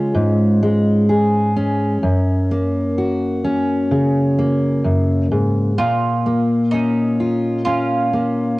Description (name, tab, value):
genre	acoustic folk duo or small band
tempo	64 BPM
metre	4/4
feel	straight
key	Bb minor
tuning	A4 = 441 Hz
part	fingerpicked steel-string acoustic guitar	accompaniment	0.0-8.6 s	Gb2 to Ab4	-16 LUFS	equal	cassette tape
part	mandolin	arpeggios	5.8-8.6 s	Eb4 to F4	-22 LUFS	right 2 dB	cassette tape
room	small room ambience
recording	home recording on cassette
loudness	-15 LUFS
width	side -20 dB against mid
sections	0.0-5.8 A section; 5.8-8.6 B section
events	none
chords	0.0 Db; 2.0 Gb; 5.8 Bbm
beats	0.16 1.09 | 2.03 2.97 3.90 4.84 | 5.78 6.71 7.65 8.59